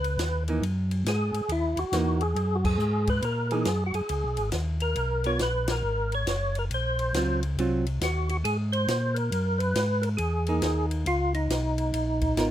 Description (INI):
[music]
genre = soul jazz organ trio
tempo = 138 BPM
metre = 4/4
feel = swing 65% on 8ths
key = unclear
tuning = A4 = 444 Hz
[part]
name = percussive tonewheel organ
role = melody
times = 0.0-12.5 s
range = Eb4 to Db5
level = -28 LUFS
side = equal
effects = slow rotary speaker, chorus vibrato
[part]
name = mellow tonewheel organ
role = bass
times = 0.0-12.5 s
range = Gb1 to Bb2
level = -27 LUFS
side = equal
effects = slow rotary speaker
[part]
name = compact cocktail drum kit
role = drums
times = 0.0-12.5 s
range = crash cymbal, hi-hat, kick drum, ride cymbal, snare drum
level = -34 LUFS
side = left 1 dB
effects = none
[part]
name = archtop guitar, miked and amplified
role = accompaniment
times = 0.5-7.8, 10.5-12.5 s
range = Fb3 to Bb4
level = -28 LUFS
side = right 2 dB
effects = none
[sound]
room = little or no reverb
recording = close, detailed microphones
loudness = -24 LUFS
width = side -11 dB against mid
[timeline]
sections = 0.0-12.5 A section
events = band accent 2.6, 5.6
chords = 0.0 Db7sus2; 0.6 Gb13; 4.1 Db7sus2; 5.8 Ab13; 9.3 Gb13; 11.1 Db13